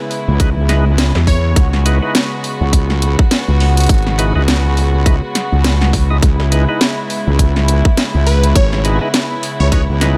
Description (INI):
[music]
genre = glitch hop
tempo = 103 BPM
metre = 4/4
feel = swing 58% on 16ths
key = C# minor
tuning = A4 = 440 Hz
[part]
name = plucky unison lead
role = melody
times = 0.0-1.9, 8.3-9.8 s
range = B4 to C#5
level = -26 LUFS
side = equal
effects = phaser, vintage 12-bit sampler grit, tape echo
[part]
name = dark studio string section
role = sustained chords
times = 0.0-10.2 s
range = C#3 to F#4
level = -24 LUFS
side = equal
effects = sidechain pumping
[part]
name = drum and bass drum kit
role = drums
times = 0.1-10.1 s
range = hi-hat, snare drum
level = -20 LUFS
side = equal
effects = overdrive, studio reverb
[part]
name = wobble bass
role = bass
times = 0.3-10.2 s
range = G#1 to E2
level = -15 LUFS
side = equal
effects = chorus
[part]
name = percussive tonewheel organ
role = stabs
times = 0.4-10.2 s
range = D#4 to D#5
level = -26 LUFS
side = equal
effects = overdrive, slow rotary speaker, vintage 12-bit sampler grit, sidechain pumping, tape echo
[part]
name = electronic kick drum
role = drums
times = 0.4-9.9 s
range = none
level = -15 LUFS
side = equal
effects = overdrive, studio reverb
[sound]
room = little or no reverb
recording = none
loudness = -14 LUFS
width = mono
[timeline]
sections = 0.0-10.2 A section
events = none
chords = 0.0 C#m7